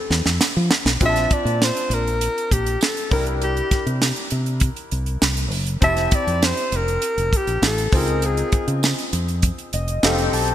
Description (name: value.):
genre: polished 1980s jazz-funk pop.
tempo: 100 BPM.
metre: 4/4.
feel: straight.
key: F major.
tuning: A4 = 436 Hz.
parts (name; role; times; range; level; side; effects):
breathy alto saxophone; melody; 0.0-8.8 s; G4 to E5; -23 LUFS; equal; ping-pong delay.
clear grand piano; accompaniment; 0.0-10.5 s; C4 to A5; -27 LUFS; left 2 dB; analog chorus.
fingered electric bass; bass; 0.1-10.5 s; F1 to F3; -22 LUFS; equal; none.
tight funk drum kit; drums; 0.1-10.5 s; hi-hat, kick drum, snare drum; -21 LUFS; right 1 dB; none.
tambourine; percussion; 0.4-10.2 s; none; -32 LUFS; right 6 dB; none.
room: light reverb, small room ambience.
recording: bright 1980s-style digital production, faint mains hum.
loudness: -18 LUFS.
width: side -11 dB against mid.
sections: 0.0-1.0 A section; 1.0-10.5 B section.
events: drum fill 0.0-1.0; grand piano fill 9.4-10.5.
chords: 0.0 Fmaj9; 1.0 Bbmaj7; 3.1 C7; 5.8 Fmaj9; 7.9 Dbmaj7; 10.0 F7.